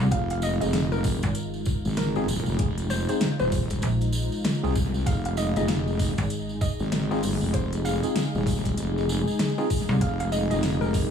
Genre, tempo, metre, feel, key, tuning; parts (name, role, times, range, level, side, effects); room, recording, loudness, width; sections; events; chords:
glitch hop; 97 BPM; 4/4; swing 61% on 16ths; F minor; A4 = 440 Hz
dark analog pad; sustained chords; 0.0-11.1 s; Ab3 to Ab4; -32 LUFS; left 2 dB; chorus, sidechain pumping
slap-like FM bass; bass; 0.0-10.0 s; Ab1 to C2; -25 LUFS; equal; tube saturation
woody wave-folded pluck; melody; 0.1-11.1 s; Bb4 to F5; -33 LUFS; equal; chorus, analog delay
wobble bass; bass; 0.1-11.1 s; Eb1 to C2; -26 LUFS; equal; chorus, tube saturation
electronic kick drum; drums; 0.1-11.1 s; -27 LUFS; equal
pop drum kit; drums; 0.1-11.1 s; hi-hat, snare drum; -30 LUFS; left 1 dB; analog delay
tambourine; percussion; 0.1-11.1 s; -38 LUFS; right 3 dB; analog delay
tine electric piano; stabs; 0.6-10.7 s; C4 to Ab4; -32 LUFS; left 1 dB; medium stereo tremolo, sidechain pumping, analog delay
little or no reverb; echo-heavy mix, small room ambience; -23 LUFS; side -7 dB against mid
0.0-11.1 A section
0.0 Fm7